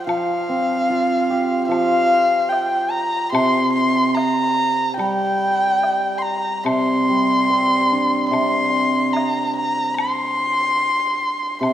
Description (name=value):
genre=chinese traditional, Chinese chamber ensemble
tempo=73 BPM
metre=4/4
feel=straight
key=unclear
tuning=A4 = 440 Hz
part: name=dark erhu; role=melody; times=0.0-11.7 s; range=F5 to C6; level=-18 LUFS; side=left 1 dB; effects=none
part: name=hammered dulcimer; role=accompaniment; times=0.0-11.7 s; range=C3 to G4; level=-21 LUFS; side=right 1 dB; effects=none
part: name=woodblock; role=percussion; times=0.1-11.7 s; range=none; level=-30 LUFS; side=left 3 dB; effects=none
room=moderate scoring stage reverb, RT60 2.1 s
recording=none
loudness=-16 LUFS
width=side -11 dB against mid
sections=0.0-11.7 A section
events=none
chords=none